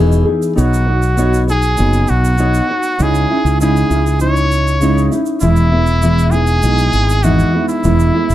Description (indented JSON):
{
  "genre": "acoustic pop",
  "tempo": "99 BPM",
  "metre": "4/4",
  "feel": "straight",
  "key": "E major",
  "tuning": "A4 = 441 Hz",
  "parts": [
    { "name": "nylon-string guitar", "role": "accompaniment", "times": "0.0-8.3 s", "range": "E2 to C#5", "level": "-15 LUFS", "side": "equal", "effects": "plate reverb" },
    { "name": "mellow fretless electric bass", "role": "bass", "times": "0.0-8.3 s", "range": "E1 to C#2", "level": "-14 LUFS", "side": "equal", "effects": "none" },
    { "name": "tube shaker", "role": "percussion", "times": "0.1-8.3 s", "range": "none", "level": "-33 LUFS", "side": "right 8 dB", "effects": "none" },
    { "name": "bright trumpet", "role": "melody", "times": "0.6-8.3 s", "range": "E4 to C#5", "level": "-18 LUFS", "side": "equal", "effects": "plate reverb" }
  ],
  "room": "moderate small room reverb, RT60 0.5 s",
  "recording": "dark, warm production",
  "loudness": "-11 LUFS",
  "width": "side -13 dB against mid",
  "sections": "0.0-8.3 A section",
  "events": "none",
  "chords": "0.0 Emaj7; 0.6 Badd9; 3.0 C#madd9; 5.4 Emaj7",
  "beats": "| 0.58 1.18 1.79 2.40 | 3.00 3.61 4.21 4.82 | 5.43 6.03 6.64 7.25 | 7.85"
}